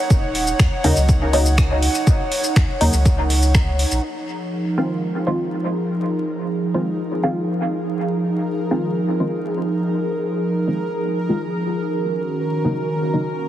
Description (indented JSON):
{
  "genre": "dub techno",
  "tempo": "122 BPM",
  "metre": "4/4",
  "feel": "straight",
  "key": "F phrygian",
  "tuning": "A4 = 440 Hz",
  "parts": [
    { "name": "airy breathy pad", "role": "sustained chords", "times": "0.0-13.5 s", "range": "Eb3 to Gb5", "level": "-22 LUFS", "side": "right 1 dB", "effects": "chorus, sidechain pumping" },
    { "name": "pure sine sub bass", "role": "bass", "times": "0.1-4.0 s", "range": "Eb1 to Eb2", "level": "-19 LUFS", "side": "equal", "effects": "sidechain pumping" },
    { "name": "deep house drum kit", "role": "drums", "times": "0.1-4.0 s", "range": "finger snaps, hi-hat, shaker", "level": "-25 LUFS", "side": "equal", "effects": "overdrive, low-pass filter on perc, small room reverb, low-pass filter on hats, low-pass filter on snare, dub echo" },
    { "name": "electronic kick drum", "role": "drums", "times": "0.1-3.6 s", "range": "none", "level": "-16 LUFS", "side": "equal", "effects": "overdrive, small room reverb" },
    { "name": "filtered dub chord stab", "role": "stabs", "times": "0.8-13.5 s", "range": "Db3 to F4", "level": "-25 LUFS", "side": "equal", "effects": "chorus, phaser, sidechain pumping, dub echo" },
    { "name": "bubbling stepped-filter texture", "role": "texture", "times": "4.5-13.5 s", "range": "Bb4", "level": "-29 LUFS", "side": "right 2 dB", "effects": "chorus, built-in reverb, sidechain pumping" }
  ],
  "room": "light reverb, digital ambience",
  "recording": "heavily compressed radio sound, multiband compression, vinyl crackle",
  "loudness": "-18 LUFS",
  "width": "side -12 dB against mid",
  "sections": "0.0-4.0 A section; 4.0-13.5 B section",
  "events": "filter sweep on synth stab 4.0-13.5; filter sweep on analog synth pad 4.0-13.5",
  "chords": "0.0 Ebm7; 4.0 Fm7; 11.9 Ebm7"
}